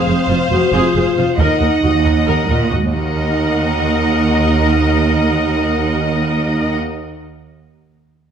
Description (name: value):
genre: cinematic, epic orchestral film score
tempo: 274 BPM (eighths)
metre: 7/8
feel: straight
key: Eb dorian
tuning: A4 = 439 Hz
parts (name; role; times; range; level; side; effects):
- warm symphonic violin section; melody; 0.0-6.7 s; F5 to Gb5; -26 LUFS; left 2 dB; none
- rich studio violin section; second line; 0.0-6.8 s; C5 to Eb5; -21 LUFS; left 2 dB; none
- rich symphonic viola section; accompaniment; 0.0-6.7 s; F4 to Bb4; -24 LUFS; equal; none
- mellow French horn section; sustained chords; 0.0-6.7 s; C4 to Gb4; -19 LUFS; equal; none
- rich studio double bass section; bass; 0.1-6.7 s; F1 to Eb2; -20 LUFS; right 3 dB; none
- rich symphonic cello section; bass; 0.1-6.7 s; Eb2 to Bb2; -19 LUFS; right 3 dB; none
room: moderate scoring stage reverb, RT60 1.6 s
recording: none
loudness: -13 LUFS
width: side -8 dB against mid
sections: 0.0-2.9 A section; 2.9-6.0 B section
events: none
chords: 0.0 Fm; 1.4 Ebm